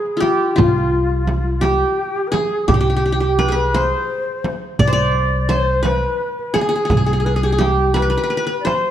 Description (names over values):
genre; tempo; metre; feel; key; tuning
Arabic maqam ensemble; 57 BPM (dotted quarters); 6/8; straight; C maqam suznak; A4 = 435 Hz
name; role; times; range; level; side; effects
qanun; melody; 0.0-8.9 s; F4 to D5; -18 LUFS; equal; none
breathy ney; second line; 0.0-8.9 s; F4 to D5; -24 LUFS; left 3 dB; slapback echo
darbuka; percussion; 0.1-8.8 s; none; -23 LUFS; right 2 dB; none
frame drum; percussion; 0.2-8.8 s; none; -24 LUFS; right 2 dB; none
upright bass; bass; 0.6-8.1 s; C2; -19 LUFS; equal; none
room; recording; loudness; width
light reverb; dark, warm production; -15 LUFS; side -10 dB against mid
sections
0.0-8.9 A section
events
none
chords
none